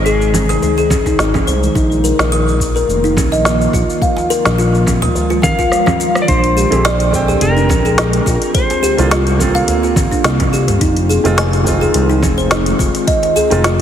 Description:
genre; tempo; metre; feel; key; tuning
organic downtempo; 106 BPM; 4/4; swing 54% on 16ths; unclear; A4 = 445 Hz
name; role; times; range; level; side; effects
clean lap steel guitar; melody; 0.0-1.1, 5.4-9.1 s; Ab4 to F5; -19 LUFS; left 2 dB; tape echo
ethereal airy pad; sustained chords; 0.0-13.8 s; C3 to G5; -21 LUFS; equal; ensemble chorus, built-in reverb, sidechain pumping
smooth synth bass; bass; 0.0-13.8 s; F1 to Eb2; -16 LUFS; equal; sidechain pumping
kalimba; arpeggios; 0.1-13.8 s; D4 to Eb6; -17 LUFS; equal; tape echo
organic electronic drum kit; drums; 0.1-13.8 s; congas, hi-hat, rim click, shaker, snare drum; -19 LUFS; right 1 dB; none
djembe; percussion; 0.5-13.5 s; none; -24 LUFS; right 1 dB; none
electronic kick drum; drums; 0.9-13.2 s; none; -18 LUFS; equal; none
felt-muted upright piano; accompaniment; 6.7-13.6 s; D3 to G5; -20 LUFS; right 4 dB; sidechain pumping, tape echo
room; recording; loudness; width
moderate lush hall reverb, RT60 2.5 s; heavily compressed radio sound; -11 LUFS; side -9 dB against mid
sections
0.0-6.3 A section; 6.3-13.8 B section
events
drum fill 5.7-6.3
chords
0.0 Ab; 1.8 Bbsus4; 6.3 Bb13; 8.5 C9sus4; 10.8 Fm7

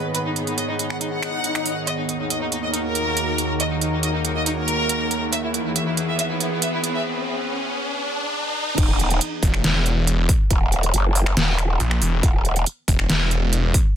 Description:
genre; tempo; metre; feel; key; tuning
heavy wobble dubstep; 139 BPM; 4/4; half-time; Eb phrygian; A4 = 440 Hz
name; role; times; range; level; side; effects
rich studio violin section; melody; 0.0-7.0 s; Eb4 to Gb5; -26 LUFS; equal; ping-pong delay
evolving wavetable pad; sustained chords; 0.0-8.7 s; Eb2 to Eb5; -27 LUFS; right 1 dB; chorus, built-in reverb, sidechain pumping
airy breathy pad; texture; 0.0-7.1 s; E3 to Cb6; -29 LUFS; left 2 dB; chorus, sidechain pumping
dubstep drum kit; drums; 0.1-13.8 s; crash cymbal, finger snaps, hi-hat, snare drum; -23 LUFS; right 2 dB; high-pass filter on hats, soft clipping on snare, high-pass filter on snare, high-pass filter on cymbals
swell and riser; sound effects; 1.1-8.8 s; none; -29 LUFS; left 1 dB; none
growl bass; bass; 8.8-12.6 s; Eb1 to Gb1; -20 LUFS; equal; chorus, overdrive
electronic kick drum; drums; 8.8-13.8 s; none; -19 LUFS; equal; none
snarling distorted saw bass; bass; 9.4-13.7 s; Fb1 to Bb1; -20 LUFS; equal; distortion, overdrive
room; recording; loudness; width
little or no reverb; dense, heavily limited modern master, high-pass filter; -19 LUFS; side -10 dB against mid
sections
0.0-1.9 A section; 1.9-8.8 B section; 8.8-14.0 C section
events
swell 1.1-1.9; build-up 1.9-8.8; riser 1.9-8.8; break 7.1-8.8; drop 8.8-14.0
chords
0.0 Abm; 1.9 Ebm; 5.3 E; 8.8 Eb5

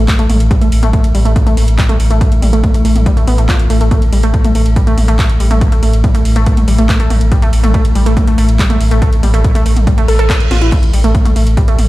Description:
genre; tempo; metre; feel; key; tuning
driving peak-time techno; 141 BPM; 4/4; straight; unclear; A4 = 440 Hz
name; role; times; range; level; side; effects
warbly dusty pluck; riff; 0.0-11.7 s; G3 to A4; -17 LUFS; equal; chorus, tube saturation, sidechain pumping, digital delay
warm sub bass; bass; 0.0-11.9 s; A1; -11 LUFS; equal; tube saturation, sidechain pumping, low-pass filter
metallic inharmonic drone; drone; 0.0-11.9 s; A2 to A3; -20 LUFS; left 2 dB; chorus, built-in reverb, sidechain pumping
electronic kick drum; drums; 0.1-11.7 s; none; -12 LUFS; equal; none
techno drum kit; drums; 0.1-11.9 s; crash cymbal, handclaps, hi-hat, ride cymbal, snare drum, toms; -22 LUFS; right 1 dB; none
reverse cymbal; sound effects; 10.0-10.7 s; none; -25 LUFS; right 7 dB; none
room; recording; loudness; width
digital ambience; played on a big sound system in a bare room, large studio reverb; -9 LUFS; side -17 dB against mid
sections
0.0-11.9 A section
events
reverse cymbal 10.0-10.7; drum fill 10.5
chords
0.0 A5

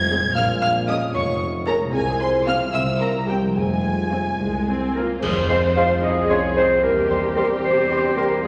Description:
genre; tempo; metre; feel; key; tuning
cinematic, playful, whimsical film cue; 75 BPM (dotted quarters); 6/8; straight; F minor; A4 = 440 Hz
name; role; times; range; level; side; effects
marimba with medium mallets; melody; 0.0-8.5 s; G4 to Ab5; -26 LUFS; equal; none
rich studio violin section; melody; 0.0-8.3 s; G5 to Ab6; -35 LUFS; equal; none
warm studio violin section; second line; 0.0-8.3 s; F4 to Ab6; -30 LUFS; equal; none
concert harp; arpeggios; 0.0-8.5 s; F2 to C6; -31 LUFS; equal; none
rich studio double bass section; bass; 0.0-8.5 s; F1 to F2; -32 LUFS; equal; none
warm studio cello section; bass; 0.0-8.5 s; C2 to F4; -36 LUFS; equal; none
warm tuba; bass; 0.0-8.5 s; E1 to C2; -32 LUFS; equal; none
warm studio viola section; accompaniment; 0.1-8.5 s; Ab3 to C5; -29 LUFS; equal; none
hollow concert flute; second line; 5.0-8.5 s; Ab4 to F5; -30 LUFS; equal; none
warm clarinet; second line; 5.0-8.5 s; Ab4 to F5; -27 LUFS; equal; none
dark French horn section; sustained chords; 5.2-8.5 s; F3 to C4; -31 LUFS; equal; none
clash cymbals and concert bass drum; percussion; 5.2-6.3 s; none; -33 LUFS; equal; none
warm oboe; second line; 5.5-8.3 s; C6; -33 LUFS; equal; none
mellow bassoon; accompaniment; 5.5-8.3 s; G3 to Ab3; -30 LUFS; equal; none
room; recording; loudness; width
wet concert hall reverb, RT60 2.1 s; vinyl crackle, nothing above 10.7 kHz; -20 LUFS; mono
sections
0.0-5.2 A section; 5.2-8.5 B section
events
band accent 5.2-5.8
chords
0.4 Bbm7; 1.9 Fm/C; 3.6 Fm; 6.8 C7/E

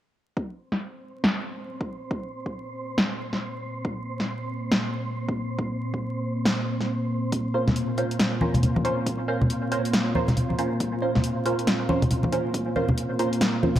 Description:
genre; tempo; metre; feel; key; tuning
deep dubstep; 138 BPM; 4/4; swing 62% on 16ths, half-time; Bb minor; A4 = 440 Hz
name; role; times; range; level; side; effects
deep dark ambient pad; sustained chords; 2.6-13.8 s; Bb3; -30 LUFS; equal; chorus, built-in reverb
electronic kick drum; drums; 0.4-13.0 s; none; -31 LUFS; equal; overdrive, high-pass filter on kick, high-pass filter on room
wind-like tuned noise texture; texture; 0.9-13.8 s; C4 to C5; -34 LUFS; right 1 dB; built-in reverb
deep house drum kit; drums; 0.7-13.8 s; hi-hat, snare drum; -26 LUFS; equal; overdrive, low-pass filter on snare, low-pass filter on hats, low-pass filter on room
filtered dub chord stab; stabs; 7.5-13.7 s; Db4 to C5; -28 LUFS; right 2 dB; phaser, wide subtle chorus, dub echo
congas; percussion; 7.7-13.8 s; none; -25 LUFS; equal; none
room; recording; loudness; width
moderate echo chamber reverb, RT60 1.4 s; dark, warm production, vinyl crackle; -24 LUFS; side -12 dB against mid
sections
0.4-13.8 A section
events
filter sweep on drum 0.4-13.8; filter sweep on ambient pad 0.4-13.8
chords
0.4 Bbmadd9

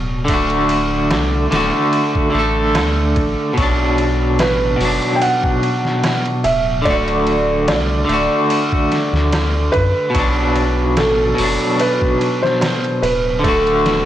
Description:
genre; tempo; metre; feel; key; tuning
trip hop; 73 BPM; 4/4; swing 54% on 16ths; unclear; A4 = 440 Hz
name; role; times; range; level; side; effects
electric guitar at the edge of break-up; accompaniment; 0.0-14.1 s; B2 to A4; -17 LUFS; equal; tremolo, tape echo
soft dub sub bass; bass; 0.0-14.1 s; D1 to F#2; -21 LUFS; equal; none
trip hop sampler-style drum kit; drums; 0.3-14.1 s; hi-hat, kick drum, ride cymbal, snare drum; -23 LUFS; equal; small room reverb
darbuka; percussion; 1.1-12.8 s; none; -27 LUFS; right 2 dB; none
felt-muted upright piano; melody; 4.4-14.1 s; A4 to G5; -19 LUFS; right 2 dB; tape echo
room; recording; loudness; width
light reverb, digital ambience; blown-out, overdriven recording, vinyl crackle, overdrive; -14 LUFS; side -12 dB against mid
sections
0.0-14.1 A section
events
none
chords
0.3 D; 3.6 Bm; 6.9 D; 10.1 Bm; 13.4 D

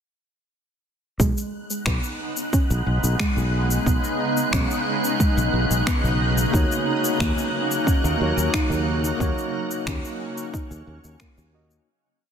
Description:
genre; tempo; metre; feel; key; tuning
sunset chillout; 90 BPM; 4/4; straight; B major; A4 = 438 Hz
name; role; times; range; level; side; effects
shimmering ambient pad; sustained chords; 2.1-11.8 s; C#3 to D#4; -26 LUFS; equal; chorus, built-in reverb
soft round pluck; arpeggios; 1.2-11.5 s; G#3 to D#4; -30 LUFS; right 2 dB; chorus, tape echo
sustaining fretless electric bass; bass; 1.2-11.8 s; B1 to D#2; -23 LUFS; equal; tube saturation
electronic kick drum; drums; 1.2-11.3 s; none; -24 LUFS; equal; overdrive
electronic shaker and finger snaps; drums; 1.2-11.8 s; none; -29 LUFS; left 2 dB; overdrive, soft clipping on snare
wind-like tuned noise texture; texture; 1.6-11.9 s; F#6; -30 LUFS; right 1 dB; built-in reverb
mellow tine electric piano; accompaniment; 6.5-11.9 s; A#3 to D#5; -28 LUFS; equal; auto-pan, tape echo
room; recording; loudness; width
light reverb; dense, heavily limited modern master; -20 LUFS; side -8 dB against mid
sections
1.2-11.9 groove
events
fade-out 8.3-11.9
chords
1.2 B69; 6.5 D#m7

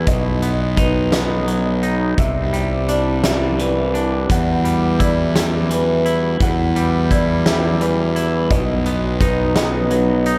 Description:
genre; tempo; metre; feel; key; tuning
post-rock; 57 BPM (dotted quarters); 6/8; straight; E minor; A4 = 440 Hz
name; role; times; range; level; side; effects
glass harmonica; sustained chords; 0.0-10.4 s; G3 to D#5; -26 LUFS; equal; none
felt-muted upright piano; arpeggios; 0.0-10.4 s; B4 to F#5; -26 LUFS; equal; analog delay
twangy electric guitar; arpeggios; 0.0-10.4 s; E2 to E4; -26 LUFS; equal; phaser, analog delay
fuzz fingered electric bass; bass; 0.0-10.4 s; B1 to E2; -22 LUFS; equal; overdrive
huge arena drum kit; drums; 0.1-10.4 s; hi-hat, kick drum, snare drum; -24 LUFS; equal; none
room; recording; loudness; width
moderate concert hall reverb, RT60 2.5 s; none; -18 LUFS; mono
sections
0.0-10.4 A section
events
none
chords
0.1 B; 2.2 Cadd9; 4.3 Emadd9; 8.5 B

